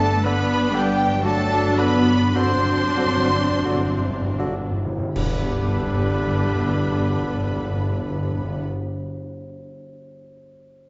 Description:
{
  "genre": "classical, slow romantic movement for symphony orchestra",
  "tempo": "38-63 BPM",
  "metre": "3/4",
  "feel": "rubato",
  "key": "G major",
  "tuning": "A4 = 438 Hz",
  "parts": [
    { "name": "warm symphonic violin section", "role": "melody", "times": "0.0-8.6 s", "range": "G5 to C6", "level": "-31 LUFS", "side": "equal", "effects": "none" },
    { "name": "bright studio violin section", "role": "second line", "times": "0.0-8.6 s", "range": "G4 to C5", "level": "-37 LUFS", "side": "equal", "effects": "none" },
    { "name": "mellow hollow silver concert flute", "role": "second line", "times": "0.0-8.6 s", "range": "G5 to C6", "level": "-34 LUFS", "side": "equal", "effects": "none" },
    { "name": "warm oboe", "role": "second line", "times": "0.0-8.7 s", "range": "G4 to C5", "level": "-34 LUFS", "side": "equal", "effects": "none" },
    { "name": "clear symphonic viola section", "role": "accompaniment", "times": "0.0-8.7 s", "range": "F#3 to D4", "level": "-31 LUFS", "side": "equal", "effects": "none" },
    { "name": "dark French horn section", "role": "sustained chords", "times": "0.0-8.7 s", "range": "F#3 to D4", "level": "-31 LUFS", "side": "equal", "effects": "none" },
    { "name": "concert harp", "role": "arpeggios", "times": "0.0-9.1 s", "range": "G2 to D5", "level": "-38 LUFS", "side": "equal", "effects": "none" },
    { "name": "rich symphonic cello section", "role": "bass", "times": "0.0-8.6 s", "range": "G3 to C4", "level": "-29 LUFS", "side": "equal", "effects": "none" },
    { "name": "rich symphonic double bass section", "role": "bass", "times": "0.0-8.6 s", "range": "G1", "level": "-29 LUFS", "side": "equal", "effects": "none" },
    { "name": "warm clarinet", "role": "second line", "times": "0.2-8.6 s", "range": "F#4 to B4", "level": "-35 LUFS", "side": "equal", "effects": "none" },
    { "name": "clear bassoon", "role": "accompaniment", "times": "0.3-8.7 s", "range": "D3", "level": "-35 LUFS", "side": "equal", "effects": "none" },
    { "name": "timpani", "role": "percussion", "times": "1.2-8.6 s", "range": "G2", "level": "-30 LUFS", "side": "equal", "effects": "none" },
    { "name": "clash cymbals and concert bass drum", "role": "percussion", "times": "5.2-8.2 s", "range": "none", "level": "-34 LUFS", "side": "equal", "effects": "none" }
  ],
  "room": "moderate scoring stage reverb, RT60 1.6 s",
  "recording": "nothing above 7.7 kHz",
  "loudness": "-21 LUFS",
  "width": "mono",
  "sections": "0.0-5.2 A section; 5.2-9.7 B section",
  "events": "slowing down 0.0-5.2; timpani fill 1.3-5.2; band accent 5.2-6.7",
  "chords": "0.0 G; 1.3 D7/G; 5.2 G",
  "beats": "0.26 | 1.25 2.37 3.66 | 5.17 6.69 8.24"
}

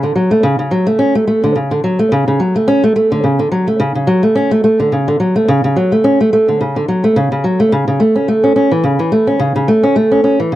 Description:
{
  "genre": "folktronica",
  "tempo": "107 BPM",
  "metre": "4/4",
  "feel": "swing 56% on 16ths",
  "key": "D major",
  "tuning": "A4 = 440 Hz",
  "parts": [
    { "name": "fingerpicked old ladder-braced acoustic guitar", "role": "solo", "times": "0.0-10.6 s", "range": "C#3 to C#4", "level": "-11 LUFS", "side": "equal", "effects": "tape echo" }
  ],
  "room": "light reverb",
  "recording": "dry, close 1970s-style studio recording",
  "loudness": "-11 LUFS",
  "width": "side -14 dB against mid",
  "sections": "0.0-10.6 A section",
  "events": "none",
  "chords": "none",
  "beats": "0.43 | 0.99 1.55 2.11 2.67 | 3.23 3.79 4.36 4.92 | 5.48 6.04 6.60 7.16 | 7.72 8.28 8.84 9.40 | 9.96 10.52"
}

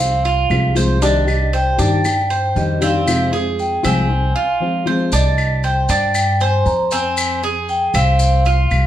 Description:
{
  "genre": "latin, Cuban son and guajira",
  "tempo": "117 BPM",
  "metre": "4/4",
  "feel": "straight",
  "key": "C minor",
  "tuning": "A4 = 440 Hz",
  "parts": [
    { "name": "vibraphone with medium mallets", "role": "melody", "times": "0.0-8.7 s", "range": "Eb5 to Bb5", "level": "-20 LUFS", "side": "equal", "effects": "plate reverb" },
    { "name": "nylon-string guitar", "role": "accompaniment", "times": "0.0-5.1 s", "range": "C3 to G4", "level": "-20 LUFS", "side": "left 3 dB", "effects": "none" },
    { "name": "Cuban tres", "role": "arpeggios", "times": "0.0-8.9 s", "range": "C4 to C5", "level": "-20 LUFS", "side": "right 3 dB", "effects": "none" },
    { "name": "upright bass", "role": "bass", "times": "0.0-8.9 s", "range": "C2 to G2", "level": "-18 LUFS", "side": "equal", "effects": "none" },
    { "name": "maracas", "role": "percussion", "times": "0.2-8.9 s", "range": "none", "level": "-28 LUFS", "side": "left 3 dB", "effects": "none" },
    { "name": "claves", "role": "percussion", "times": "0.5-8.9 s", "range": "none", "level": "-26 LUFS", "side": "left 2 dB", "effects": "none" }
  ],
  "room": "moderate large studio reverb, RT60 0.8 s",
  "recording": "heard from further back in the room",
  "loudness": "-14 LUFS",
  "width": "side -11 dB against mid",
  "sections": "0.0-5.1 A section; 5.1-8.9 A section",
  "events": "none",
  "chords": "0.0 Fm; 1.0 Cmadd9; 3.1 Fm; 5.1 Csus2; 7.2 Fm",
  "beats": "0.51 | 1.02 1.53 2.05 2.56 | 3.07 3.59 4.10 4.61 | 5.12 5.64 6.15 6.66 | 7.17 7.69 8.20 8.71"
}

